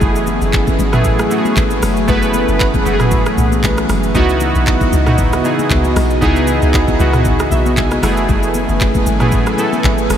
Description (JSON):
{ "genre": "amapiano", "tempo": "116 BPM", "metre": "4/4", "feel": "swing 55% on 16ths", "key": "unclear", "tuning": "A4 = 440 Hz", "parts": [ { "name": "warm analog keys", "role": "accompaniment", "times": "0.0-10.2 s", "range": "A3 to G#5", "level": "-16 LUFS", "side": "right 1 dB", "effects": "chorus" }, { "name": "airy breathy pad", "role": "sustained chords", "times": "0.0-10.2 s", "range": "C#3 to G#5", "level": "-19 LUFS", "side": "left 1 dB", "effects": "chorus" }, { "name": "deep log drum bass", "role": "bass", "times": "0.0-10.2 s", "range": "F#1 to C#2", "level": "-18 LUFS", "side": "equal", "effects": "none" }, { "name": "smooth R&B drum kit", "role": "drums", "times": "0.0-10.2 s", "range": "handclaps, hi-hat, kick drum, rim click, shaker, toms", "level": "-17 LUFS", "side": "equal", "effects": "none" }, { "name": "congas", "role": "percussion", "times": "0.0-10.2 s", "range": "none", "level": "-26 LUFS", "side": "left 7 dB", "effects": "none" } ], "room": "moderate huge ambient reverb, RT60 7.2 s", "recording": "dreamy mix soaked in reverb", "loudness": "-12 LUFS", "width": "side -9 dB against mid", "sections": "0.0-10.2 A section", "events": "synth keys fill 7.3-8.3", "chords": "0.0 F#m11; 4.2 C#m11; 8.0 F#m11" }